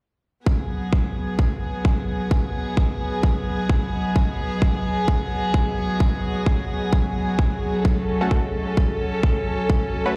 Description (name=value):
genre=bass house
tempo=130 BPM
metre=4/4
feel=swing 56% on 16ths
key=G# phrygian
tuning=A4 = 440 Hz
part: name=rich chamber string section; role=sustained chords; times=0.5-10.2 s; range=F#3 to A4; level=-28 LUFS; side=equal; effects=sidechain pumping
part: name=electronic kick drum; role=drums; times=0.5-9.8 s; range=none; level=-22 LUFS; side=equal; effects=none
part: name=granular cloud pad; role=texture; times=1.7-10.2 s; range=F#4 to C#6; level=-38 LUFS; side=equal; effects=built-in reverb, sidechain pumping
part: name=band-passed chord stab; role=stabs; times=8.2-10.2 s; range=A3 to B4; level=-29 LUFS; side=equal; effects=chorus, sidechain pumping, tape echo
room=light reverb, digital ambience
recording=played on a big sound system in a bare room, large studio reverb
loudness=-22 LUFS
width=mono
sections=0.5-10.2 A section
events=fade-in on ambient pad 0.5-10.2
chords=0.5 G#m7; 7.8 F#m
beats=| 0.47 0.93 1.39 1.85 | 2.31 2.77 3.23 3.69 | 4.16 4.62 5.08 5.54 | 6.00 6.46 6.93 7.39 | 7.85 8.31 8.77 9.23 | 9.70 10.16